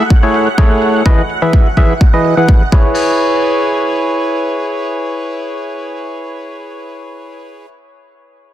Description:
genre	piano house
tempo	126 BPM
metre	4/4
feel	straight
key	C# minor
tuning	A4 = 440 Hz
part	analog string pad	sustained chords	0.0-2.7 s	F#5	-22 LUFS	right 4 dB	ensemble chorus, sidechain pumping
part	percussive organ stab	riff	0.0-7.7 s	E3 to F#5	-14 LUFS	equal	chorus, sidechain pumping, dub echo
part	electronic kick drum	drums	0.1-2.8 s	none	-9 LUFS	equal	none
part	house drum kit	drums	0.1-2.8 s	crash cymbal, hi-hat	-29 LUFS	left 4 dB	low-pass filter on hats, low-pass filter on cymbals, low-pass filter on room
room	light reverb, digital ambience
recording	dense, heavily limited modern master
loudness	-10 LUFS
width	side -12 dB against mid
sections	0.0-3.0 A section; 3.0-6.8 B section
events	none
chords	0.0 Amaj7; 1.1 Emaj7; 2.7 C#m7

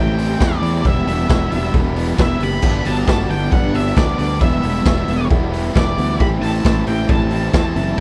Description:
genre	indie rock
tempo	135 BPM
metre	4/4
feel	straight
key	unclear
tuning	A4 = 440 Hz
part	octave-fuzz lead guitar	melody	0.0-8.0 s	D5 to B5	-28 LUFS	equal	distortion, tape echo
part	bell-like tine electric piano	second line	0.0-8.0 s	A3 to G4	-31 LUFS	equal	none
part	analog string pad	sustained chords	0.0-8.0 s	D3 to G4	-32 LUFS	equal	none
part	fuzz guitar	riff	0.0-8.0 s	E3 to E4	-26 LUFS	equal	distortion
part	fuzz fingered electric bass	bass	0.0-8.0 s	E1 to E2	-22 LUFS	equal	overdrive
part	raw garage drum kit	drums	0.2-8.0 s	crash cymbal, hi-hat, kick drum, snare drum	-21 LUFS	equal	none
room	little or no reverb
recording	none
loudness	-17 LUFS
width	mono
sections	0.0-8.0 A section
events	none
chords	0.0 Am7; 0.8 Em; 2.6 Gmaj7; 4.4 Em; 6.2 Am7

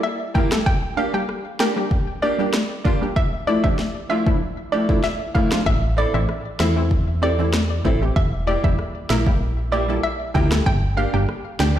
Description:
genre	dancehall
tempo	96 BPM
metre	4/4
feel	straight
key	D minor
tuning	A4 = 440 Hz
part	hollow square pluck	melody	0.0-11.7 s	D5 to G5	-26 LUFS	equal	chorus, ping-pong delay
part	punchy chord stab	accompaniment	0.3-11.8 s	E3 to Bb4	-27 LUFS	right 1 dB	chorus
part	fingerpicked steel-string acoustic guitar	arpeggios	0.3-11.7 s	F3 to A4	-26 LUFS	equal	none
part	afro-pop drum kit	drums	0.4-11.8 s	kick drum, rim click, snare drum	-21 LUFS	equal	none
part	solid FM bass	bass	5.7-11.8 s	E1 to E2	-21 LUFS	equal	none
room	light reverb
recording	played on a big sound system in a bare room, stone room reverb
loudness	-18 LUFS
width	side -11 dB against mid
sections	0.0-11.8 A section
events	none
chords	0.0 Edim; 0.7 Gm; 3.2 Dmadd9; 5.7 Am; 8.2 Edim; 10.7 Gm

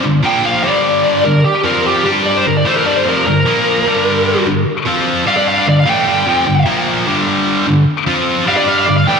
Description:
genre	rock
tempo	150 BPM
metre	4/4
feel	straight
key	G minor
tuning	A4 = 440 Hz
part	high-gain distorted guitar	riff	0.0-9.2 s	F2 to G4	-13 LUFS	equal	distortion
part	bluesy overdriven lead guitar	melody	0.3-9.2 s	G4 to G5	-15 LUFS	equal	distortion, slapback echo
room	wet lush hall reverb, RT60 2.6 s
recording	big arena sound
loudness	-11 LUFS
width	side -5 dB against mid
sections	0.0-9.2 A section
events	lead electric guitar solo 0.0-9.2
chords	0.2 Bb5; 0.6 G5; 1.7 F5; 2.1 G5; 3.5 Bb5; 3.9 Gm; 4.9 F5; 5.3 G5; 6.7 Bb5; 7.1 G5; 8.1 F5; 8.5 G5

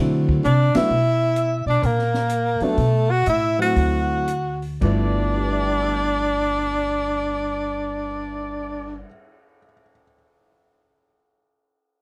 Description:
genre	jazz, small-group swing and bop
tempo	110-131 BPM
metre	4/4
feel	swing 65% on 8ths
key	G mixolydian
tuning	A4 = 439 Hz
part	warm grand piano	accompaniment	0.0-10.1 s	G2 to G6	-29 LUFS	equal	none
part	upright bass	bass	0.0-9.0 s	G1 to D3	-26 LUFS	equal	none
part	open jazz drum kit	drums	0.3-9.0 s	crash cymbal, cymbal swell, hi-hat, kick drum, ride cymbal, snare drum	-28 LUFS	equal	none
part	breathy tenor saxophone	melody	0.4-9.0 s	A3 to F#4	-25 LUFS	equal	slapback echo
part	breathy alto saxophone	second line	0.5-9.0 s	A4 to F#5	-31 LUFS	equal	none
room	little or no reverb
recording	dry, close 1970s-style studio recording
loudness	-21 LUFS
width	mono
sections	0.9-4.8 A section; 4.8-9.2 B section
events	drum fill 0.4-0.9; band accent 0.7; slowing down 0.9-4.8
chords	0.0 D9; 0.9 Bmadd11; 1.8 Bb; 2.8 B5; 3.8 D9; 4.8 G13

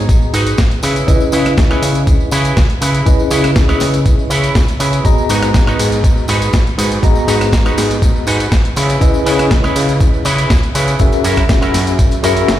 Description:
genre	nu-disco, nu disco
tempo	121 BPM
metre	4/4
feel	straight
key	unclear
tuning	A4 = 440 Hz
part	mellow tine electric piano	accompaniment	0.0-12.6 s	B3 to A#5	-19 LUFS	left 2 dB	fast stereo tremolo, sidechain pumping, dub echo
part	electric guitar with an envelope filter	riff	0.0-12.5 s	C#4 to B4	-19 LUFS	right 2 dB	analog chorus, dub echo
part	fat analog bass	bass	0.0-12.6 s	F#1 to C#3	-17 LUFS	equal	none
part	dusty soul sampler-style drum kit	drums	0.1-12.6 s	hi-hat, ride cymbal, rim click, snare drum, tambourine	-20 LUFS	equal	overdrive, small room reverb
part	electronic kick drum	drums	0.1-12.1 s	none	-12 LUFS	equal	overdrive, small room reverb
part	tambourine	percussion	0.1-12.6 s	none	-30 LUFS	left 2 dB	none
room	little or no reverb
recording	played on a big sound system in a bare room, large studio reverb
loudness	-10 LUFS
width	side -12 dB against mid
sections	0.0-12.6 A section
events	none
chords	0.0 G#m7; 0.8 C#m7; 5.0 G#m7; 8.8 C#m7; 11.0 F#7

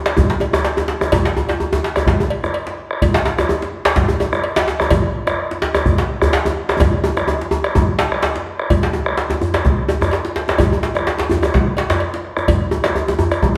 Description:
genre	west african traditional, West African drum ensemble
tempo	127 BPM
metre	4/4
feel	swing 54% on 16ths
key	none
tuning	none
part	bombo	percussion	0.1-13.5 s	none	-21 LUFS	equal	none
part	cowbell	percussion	0.1-13.4 s	none	-28 LUFS	equal	none
part	djembe	percussion	0.1-13.4 s	none	-25 LUFS	equal	none
part	djembe	percussion	0.1-13.5 s	none	-21 LUFS	equal	none
room	moderate recital hall reverb, RT60 1.4 s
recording	none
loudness	-18 LUFS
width	mono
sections	0.0-8.7 A section; 8.7-13.6 B section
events	drum fill 6.8-8.7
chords	none

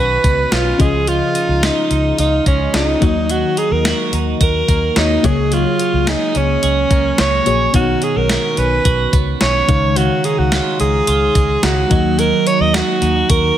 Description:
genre	1980s-style pop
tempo	108 BPM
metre	4/4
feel	straight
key	unclear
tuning	A4 = 440 Hz
part	bright alto saxophone	melody	0.0-13.6 s	C#4 to D#5	-17 LUFS	right 2 dB	digital delay
part	FM electric piano with tremolo	accompaniment	0.0-13.6 s	B2 to E#5	-21 LUFS	left 7 dB	none
part	twelve-string electric guitar	riff	0.0-13.6 s	D#3 to G#4	-22 LUFS	right 9 dB	lush chorus, digital delay
part	vintage muted fingered electric bass	bass	0.0-13.5 s	A#1 to D#2	-19 LUFS	equal	none
part	clean 12-bit digital drum machine	drums	0.2-13.4 s	hi-hat, kick drum, snare drum	-18 LUFS	equal	gated reverb
room	light reverb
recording	none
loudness	-13 LUFS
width	side -11 dB against mid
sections	0.0-13.6 A section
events	none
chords	0.0 Badd9; 0.8 C#add9; 3.0 D#m; 5.2 F#add9/C#; 7.7 Badd9; 9.7 C#add9; 11.9 D#m

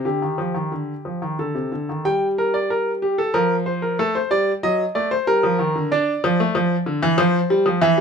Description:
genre	classical, baroque-style two-part invention for grand piano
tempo	93 BPM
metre	3/4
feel	straight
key	G minor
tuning	A4 = 441 Hz
part	clear baby grand piano	solo	0.0-8.0 s	C3 to G5	-18 LUFS	equal	none
room	moderate studio reverb, RT60 0.9 s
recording	minimal, uncompressed stereo recording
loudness	-18 LUFS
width	side -6 dB against mid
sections	0.0-2.1 A section; 2.1-8.0 B section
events	none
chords	0.1 Dsus4; 1.4 D5; 2.1 Gm; 3.3 Bb5/F; 4.0 D7; 5.3 Gm; 5.9 Dm; 7.2 F5

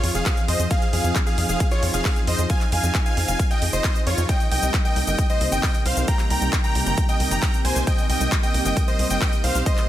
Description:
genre	uplifting trance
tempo	134 BPM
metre	4/4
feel	straight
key	F minor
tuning	A4 = 439 Hz
part	supersaw chords	melody	0.0-9.8 s	F4 to Bb5	-26 LUFS	equal	sidechain pumping, ping-pong delay
part	clear baby grand piano	second line	0.0-9.8 s	Db5 to Bb5	-32 LUFS	equal	sidechain pumping, tape echo
part	lush unison pad	sustained chords	0.0-9.9 s	C3 to Ab4	-29 LUFS	equal	chorus, sidechain pumping
part	tight sequencer bass	bass	0.0-9.6 s	F1 to F2	-23 LUFS	equal	sidechain pumping
part	big-room dance drum kit	drums	0.0-9.9 s	handclaps, hi-hat, shaker	-28 LUFS	equal	overdrive
part	downlifter	sound effects	0.0-0.7 s	none	barely audible	none	none
part	electronic kick drum	drums	0.3-9.8 s	none	-21 LUFS	equal	overdrive
room	digital ambience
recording	none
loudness	-19 LUFS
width	side -13 dB against mid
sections	0.0-9.9 A section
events	none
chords	0.0 Fm7; 4.3 Cm7

